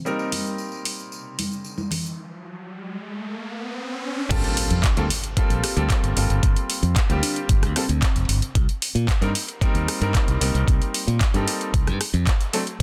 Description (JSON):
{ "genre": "nu-disco, nu disco", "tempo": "113 BPM", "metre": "4/4", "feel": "straight", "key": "unclear", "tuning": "A4 = 440 Hz", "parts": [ { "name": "clear baby grand piano", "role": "accompaniment", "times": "0.0-12.6 s", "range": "F#3 to Bb4", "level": "-30 LUFS", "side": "equal", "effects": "digital delay" }, { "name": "pop drum kit", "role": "drums", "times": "0.1-12.8 s", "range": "cabasa, crash cymbal, handclaps, hi-hat, rim click", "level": "-29 LUFS", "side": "equal", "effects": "none" }, { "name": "tambourine and congas", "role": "percussion", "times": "0.1-2.2 s", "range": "none", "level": "-34 LUFS", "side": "equal", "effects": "none" }, { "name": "riser and impact", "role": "sound effects", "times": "1.3-6.4 s", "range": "none", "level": "-34 LUFS", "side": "equal", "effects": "none" }, { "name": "modern bright fingered electric bass", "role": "bass", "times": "4.3-12.8 s", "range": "F1 to Bb2", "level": "-25 LUFS", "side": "equal", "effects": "none" }, { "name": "electronic kick drum", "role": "drums", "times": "4.3-12.8 s", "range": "none", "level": "-23 LUFS", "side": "equal", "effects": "none" }, { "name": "soft octave-layered synth lead", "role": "melody", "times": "5.6-8.5 s", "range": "C4 to G4", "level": "-36 LUFS", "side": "equal", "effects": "chorus, phaser, digital delay" } ], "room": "digital ambience", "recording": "dense, heavily limited modern master", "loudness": "-23 LUFS", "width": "mono", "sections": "0.0-4.3 A section; 4.3-12.8 B section", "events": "riser 1.4-4.3; break 2.2-4.3; drop 4.3-12.8; impact 4.3-6.4", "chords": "0.1 Cm7; 4.0 N.C.; 4.3 Gm11; 8.6 Cm7", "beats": "| 0.06 0.59 1.12 1.65 | 2.18 2.71 3.24 3.77 | 4.30 4.84 5.37 5.90 | 6.43 6.96 7.49 8.02 | 8.55 9.08 9.61 10.14 | 10.68 11.21 11.74 12.27 | 12.80" }